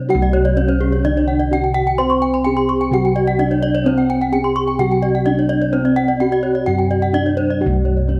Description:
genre	Balinese gamelan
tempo	128 BPM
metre	4/4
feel	straight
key	C pelog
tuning	A4 = 436 Hz
part	gamelan-type bronze metallophone	melody	0.0-8.2 s	C4 to C5	-21 LUFS	equal	none
part	gamelan-type bronze metallophone	accompaniment	0.0-8.2 s	C3 to C4	-27 LUFS	equal	none
part	gamelan-type bronze metallophone	arpeggios	0.0-8.2 s	C5 to Db6	-26 LUFS	equal	none
part	gamelan-type bossed gongs	bass	0.0-8.2 s	C2 to C5	-21 LUFS	equal	none
part	gamelan-type bronze metallophone	arpeggios	0.3-8.1 s	Ab4-40c to Db6	-26 LUFS	equal	none
room	moderate recital hall reverb, RT60 1.3 s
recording	none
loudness	-17 LUFS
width	mono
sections	0.1-8.2 A section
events	none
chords	none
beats	| 0.10 0.57 1.04 1.51 | 1.98 2.45 2.92 3.39 | 3.86 4.33 4.80 5.27 | 5.74 6.21 6.68 7.15 | 7.62 8.09

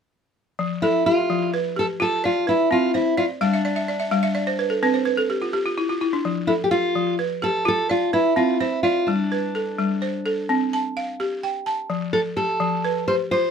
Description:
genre	west african traditional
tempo	85 BPM (dotted quarters)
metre	12/8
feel	straight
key	F lydian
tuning	A4 = 440 Hz
part	balafon	arpeggios	0.6-13.5 s	F3 to A5	-22 LUFS	equal	none
part	fingerpicked steel-string acoustic guitar	melody	0.8-13.5 s	D4 to C5	-22 LUFS	equal	none
room	light reverb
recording	close, detailed microphones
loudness	-20 LUFS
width	side -7 dB against mid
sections	0.6-13.5 A section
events	balafon fill 3.4-6.2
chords	0.6 F; 3.4 G5; 4.8 C5; 6.2 F; 9.1 G; 10.5 C5; 11.9 F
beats	| 0.58 1.29 2.00 2.70 | 3.41 4.12 4.83 5.53 | 6.24 6.95 7.65 8.36 | 9.07 9.78 10.48 11.19 | 11.90 12.60 13.31

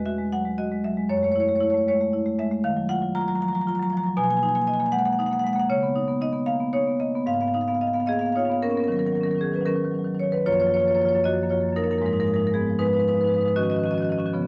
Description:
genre	classical, contemporary piece for solo marimba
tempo	78 BPM (dotted quarters)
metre	6/8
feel	rubato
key	Eb minor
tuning	A4 = 441 Hz
part	marimba with medium hard mallets	solo	0.0-14.5 s	E2 to Bb5	-24 LUFS	equal	none
room	light reverb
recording	none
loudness	-24 LUFS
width	mono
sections	0.0-8.9 A section; 8.9-14.5 B section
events	none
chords	0.0 Eadd9; 1.1 F#m7; 2.6 Ebmadd9; 4.2 Bmaj7; 5.7 Dbsus2; 7.3 Abm6; 8.9 Ebm7; 10.5 Gbmaj7; 12.0 Abm6; 13.6 Ebm9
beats	0.32 | 1.09 1.87 | 2.63 3.40 | 4.17 4.94 | 5.71 6.48 | 7.28 8.09 | 8.89 9.68 | 10.46 11.24 | 12.01 12.79 | 13.56 14.33

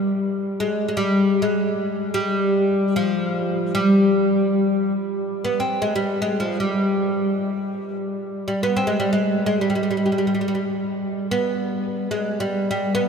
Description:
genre	Turkish makam ensemble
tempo	free time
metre	none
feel	none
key	G makam hicaz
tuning	A4 = 440 Hz
part	oud	melody	0.0-13.1 s	F3 to C4	-20 LUFS	equal	none
part	dark duduk	drone	0.0-13.1 s	G3	-28 LUFS	equal	stereo widening
room	wet cathedral reverb, RT60 6.3 s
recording	in a vast, echoing space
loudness	-19 LUFS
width	side -6 dB against mid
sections	0.0-13.1 A section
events	none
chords	none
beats	free time

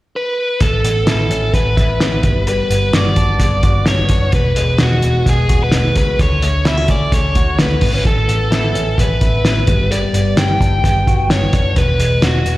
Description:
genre	jangly indie pop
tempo	129 BPM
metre	4/4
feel	straight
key	A major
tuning	A4 = 438 Hz
part	biting lead guitar	melody	0.2-12.6 s	F#4 to G5	-18 LUFS	equal	overdrive, slapback echo
part	direct-recorded clean electric guitar	arpeggios	0.6-12.6 s	E2 to F#4	-23 LUFS	left 3 dB	phaser, slapback echo
part	vintage muted picked electric bass	bass	0.6-12.6 s	E1 to D2	-17 LUFS	equal	none
part	cloth-damped thuddy drum kit	drums	0.6-12.6 s	hi-hat, kick drum, snare drum	-16 LUFS	equal	none
room	light reverb, studio reverb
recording	live gig heard through the venue's PA, recital hall reverb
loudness	-12 LUFS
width	side -17 dB against mid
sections	0.6-12.6 A section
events	none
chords	0.0 N.C.; 0.6 Aadd9; 2.2 Gmaj7; 4.3 Eadd9; 6.2 Dmaj7; 8.1 Aadd9; 9.7 Gmaj7; 11.8 Eadd9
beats	0.14 | 0.61 1.07 1.54 2.01 | 2.47 2.94 3.41 3.87 | 4.34 4.80 5.27 5.73 | 6.20 6.66 7.13 7.59 | 8.06 8.52 8.98 9.45 | 9.91 10.38 10.84 11.30 | 11.77 12.23

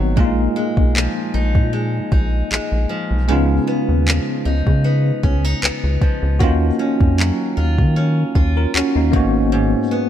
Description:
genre	contemporary R&B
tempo	77 BPM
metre	4/4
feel	swing 54% on 16ths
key	Eb minor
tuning	A4 = 440 Hz
part	bell-like tine electric piano	accompaniment	0.0-10.1 s	Ab3 to Bb4	-21 LUFS	left 1 dB	fast stereo tremolo
part	picked steel-string acoustic guitar	arpeggios	0.0-10.1 s	Ab2 to F4	-23 LUFS	equal	none
part	rubbery square bass	bass	0.0-9.8 s	Ab1 to Eb3	-18 LUFS	equal	none
part	smooth R&B drum kit	drums	0.2-9.3 s	handclaps, kick drum	-18 LUFS	equal	none
room	little or no reverb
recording	dark, warm production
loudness	-15 LUFS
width	side -10 dB against mid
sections	0.0-10.1 A section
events	break 0.0-6.4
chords	0.2 Bb7sus4; 3.3 Db9; 6.4 Ebm9; 9.1 Abm11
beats	| 0.17 0.95 1.73 2.51 | 3.29 4.07 4.85 5.63 | 6.41 7.18 7.96 8.74 | 9.52

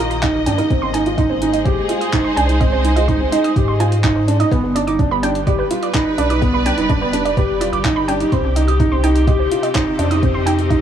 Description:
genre	piano and strings electronica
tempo	126 BPM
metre	4/4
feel	straight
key	C minor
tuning	A4 = 440 Hz
part	dark studio string section	sustained chords	0.0-10.8 s	C3 to Eb5	-23 LUFS	equal	sidechain pumping
part	warbly dusty pluck	arpeggios	0.0-10.7 s	Bb4 to Eb6	-24 LUFS	right 5 dB	chorus, sidechain pumping, tape echo
part	felt-muted upright piano	riff	0.0-10.8 s	B3 to G4	-18 LUFS	right 1 dB	tape echo
part	warm sub bass	bass	0.0-10.8 s	F1 to Ab2	-20 LUFS	equal	sidechain pumping
part	deep house drum kit	drums	0.1-10.8 s	handclaps, hi-hat	-28 LUFS	equal	none
part	electronic kick drum	drums	0.2-10.8 s	none	-19 LUFS	equal	none
room	light reverb, digital ambience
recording	none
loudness	-14 LUFS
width	side -9 dB against mid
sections	0.0-10.8 A section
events	none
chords	0.0 Eb; 0.7 Ab; 4.5 G; 8.3 Cm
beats	0.23 | 0.71 1.18 1.66 2.13 | 2.61 3.09 3.56 4.04 | 4.51 4.99 5.47 5.94 | 6.42 6.90 7.37 7.85 | 8.32 8.80 9.28 9.75 | 10.23 10.71

